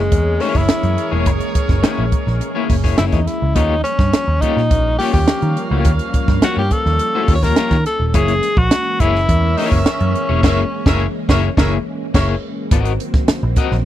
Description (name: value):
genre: funk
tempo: 105 BPM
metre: 4/4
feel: straight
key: unclear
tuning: A4 = 440 Hz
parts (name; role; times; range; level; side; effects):
- breathy tenor saxophone; melody; 0.0-11.1 s; Ab3 to Db5; -19 LUFS; left 1 dB; none
- string machine, full ensemble; sustained chords; 0.0-13.8 s; Eb3 to Db4; -25 LUFS; equal; ensemble chorus
- vintage muted picked electric bass; bass; 0.0-13.8 s; Eb1 to Eb3; -18 LUFS; equal; none
- warm horn section; second line; 0.1-12.3 s; Bb3 to F5; -26 LUFS; right 2 dB; none
- compact cocktail drum kit; drums; 0.1-13.8 s; crash cymbal, hi-hat, kick drum, snare drum; -16 LUFS; right 1 dB; none
- electric guitar at the edge of break-up; accompaniment; 0.4-13.8 s; Bb3 to Eb5; -21 LUFS; left 9 dB; tremolo
room: little or no reverb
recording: dry, close 1970s-style studio recording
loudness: -14 LUFS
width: side -12 dB against mid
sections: 0.0-12.7 A section; 12.7-13.8 B section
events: tenor saxophone solo 0.0-12.7; band accent 10.4-12.7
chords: 0.0 Gb9; 3.6 Eb9; 8.1 Gb9; 12.7 Ab9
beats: 0.12 0.69 | 1.27 1.84 2.42 2.99 | 3.56 4.14 4.71 5.28 | 5.85 6.43 7.00 7.57 | 8.14 8.71 9.29 9.86 | 10.43 11.00 11.57 12.14 | 12.71 13.29